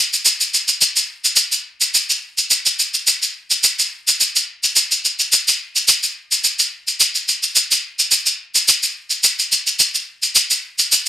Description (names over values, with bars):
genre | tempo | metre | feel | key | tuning
indie pop | 107 BPM | 4/4 | swing 55% on 16ths | none | none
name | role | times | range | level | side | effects
tube shaker | percussion | 0.1-11.1 s | none | -13 LUFS | equal | none
room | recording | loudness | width
little or no reverb | dry, close 1970s-style studio recording | -14 LUFS | side -14 dB against mid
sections
0.0-1.4 A section; 1.4-11.1 B section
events
none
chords
none